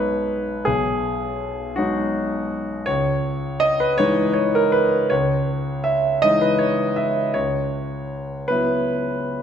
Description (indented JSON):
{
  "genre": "neoclassical minimalist piano",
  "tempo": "54 BPM (dotted quarters)",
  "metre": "6/8",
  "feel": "rubato",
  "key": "unclear",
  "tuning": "A4 = 439 Hz",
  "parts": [
    { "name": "warm concert grand piano", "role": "solo", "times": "0.0-9.4 s", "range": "B1 to E5", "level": "-19 LUFS", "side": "equal", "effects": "none" }
  ],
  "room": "wet scoring stage reverb, RT60 1.6 s",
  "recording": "none",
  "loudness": "-19 LUFS",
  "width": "side -8 dB against mid",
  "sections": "0.0-9.4 A section",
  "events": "none",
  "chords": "0.0 G#m7/B; 2.9 C#madd9; 7.3 F#7sus4/C#"
}